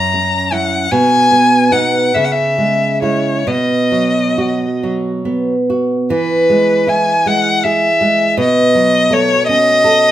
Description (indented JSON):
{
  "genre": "romantic duo for violin and classical guitar",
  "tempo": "43-56 BPM (dotted quarters)",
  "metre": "6/8",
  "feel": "rubato",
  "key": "E major",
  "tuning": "A4 = 443 Hz",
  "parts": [
    { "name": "rich violin", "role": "melody", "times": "0.0-10.1 s", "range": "B4 to A#5", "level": "-13 LUFS", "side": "left 1 dB", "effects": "none" },
    { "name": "nylon-string guitar", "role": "accompaniment", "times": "0.0-10.1 s", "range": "F#2 to A4", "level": "-15 LUFS", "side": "right 2 dB", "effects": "none" }
  ],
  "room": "moderate large studio reverb, RT60 1.0 s",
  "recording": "band playing live in one room",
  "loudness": "-11 LUFS",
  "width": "side -12 dB against mid",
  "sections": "0.0-6.1 A section; 6.1-10.1 B section",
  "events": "none",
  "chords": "0.0 F#7; 0.9 B; 2.1 C#m; 3.5 B; 6.1 E; 8.4 B9",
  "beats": "| 0.91 2.15 | 3.47 4.83 | 6.12 7.28 | 8.40 9.48"
}